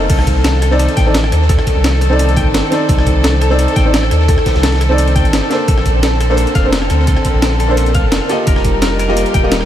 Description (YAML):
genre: liquid drum and bass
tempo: 172 BPM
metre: 4/4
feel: straight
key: C dorian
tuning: A4 = 440 Hz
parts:
  - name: felt-muted upright piano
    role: accompaniment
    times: 0.0-9.5 s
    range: Bb3 to Eb5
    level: -18 LUFS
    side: equal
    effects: ping-pong delay
  - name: dark studio string section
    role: sustained chords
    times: 0.0-9.7 s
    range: D3 to Bb4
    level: -21 LUFS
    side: left 1 dB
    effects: none
  - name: clean electric guitar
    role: arpeggios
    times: 0.0-9.4 s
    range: A4 to G5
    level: -22 LUFS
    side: left 3 dB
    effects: lush chorus, ping-pong delay
  - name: saturated sub bass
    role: bass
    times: 0.0-9.7 s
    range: Eb1 to Eb2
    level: -14 LUFS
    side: equal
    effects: none
  - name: breakbeat sampler-style drum kit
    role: drums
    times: 0.1-9.7 s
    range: crash cymbal, hi-hat, rim click, snare drum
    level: -20 LUFS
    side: equal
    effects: none
  - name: crunchy breakbeat drum kit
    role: drums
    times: 0.1-9.6 s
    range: ride cymbal, snare drum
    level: -28 LUFS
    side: right 1 dB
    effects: high-pass filter on cymbals, high-pass filter on snare, high-pass filter on room
  - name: electronic kick drum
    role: drums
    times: 0.1-9.4 s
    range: none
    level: -14 LUFS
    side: equal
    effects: none
room: light reverb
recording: none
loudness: -10 LUFS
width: side -11 dB against mid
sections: 0.0-9.7 A section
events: none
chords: 0.1 Cm69; 5.5 Bbmaj9; 8.5 F9sus4